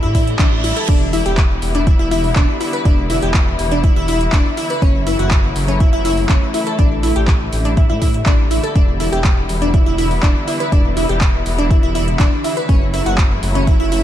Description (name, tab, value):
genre	progressive house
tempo	122 BPM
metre	4/4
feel	straight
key	E dorian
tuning	A4 = 438 Hz
part	muted studio string section	sustained chords	0.0-14.0 s	C#3 to E4	-24 LUFS	left 2 dB	sidechain pumping
part	glassy wavetable pluck	arpeggios	0.0-14.0 s	C#4 to B5	-20 LUFS	equal	chorus, sidechain pumping, ping-pong delay
part	dark detuned saw bass	bass	0.0-14.0 s	E1 to A2	-20 LUFS	equal	sidechain pumping
part	reverse cymbal	sound effects	0.1-0.9 s	none	-26 LUFS	right 6 dB	none
part	big-room dance drum kit	drums	0.1-14.0 s	crash cymbal, handclaps, hi-hat	-25 LUFS	equal	overdrive, small room ambience
part	electronic kick drum	drums	0.1-13.8 s	none	-14 LUFS	equal	small room ambience
room	little or no reverb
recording	dark, warm production, lossy compression artefacts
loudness	-13 LUFS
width	side -11 dB against mid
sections	0.0-14.0 A section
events	reverse cymbal 0.1-0.9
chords	0.0 A7sus4; 0.9 Em7; 4.8 F#m7; 6.8 A7sus4; 8.8 Em7; 12.7 F#m7